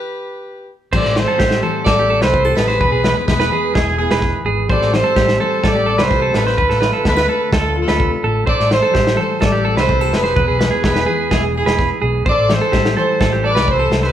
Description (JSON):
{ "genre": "highlife guitar band", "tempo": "127 BPM", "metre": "4/4", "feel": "straight", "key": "A minor", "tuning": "A4 = 438 Hz", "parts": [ { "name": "warm horn section", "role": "melody", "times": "0.0-14.1 s", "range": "E4 to D5", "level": "-18 LUFS", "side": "equal", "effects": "none" }, { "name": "fingerpicked steel-string acoustic guitar", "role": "accompaniment", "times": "0.9-14.1 s", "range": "E2 to G4", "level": "-24 LUFS", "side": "left 7 dB", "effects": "none" }, { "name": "clean electric guitar", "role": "arpeggios", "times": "0.9-14.1 s", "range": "G4 to C5", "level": "-20 LUFS", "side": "right 5 dB", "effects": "spring reverb" }, { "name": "fingered electric bass", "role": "bass", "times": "0.9-14.1 s", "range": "E1 to D2", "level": "-21 LUFS", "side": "equal", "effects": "none" }, { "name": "crunchy breakbeat drum kit", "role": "drums", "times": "0.9-14.1 s", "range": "crash cymbal, kick drum, snare drum", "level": "-19 LUFS", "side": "equal", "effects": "none" } ], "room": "moderate large studio reverb, RT60 0.8 s", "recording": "band playing live in one room", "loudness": "-13 LUFS", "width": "side -10 dB against mid", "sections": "0.9-14.1 A section", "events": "stop 0.0-0.9", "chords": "0.0 G; 0.9 Am7; 2.8 E; 4.7 Am7; 6.6 Dm; 8.5 Am7; 10.4 E; 12.3 Am7" }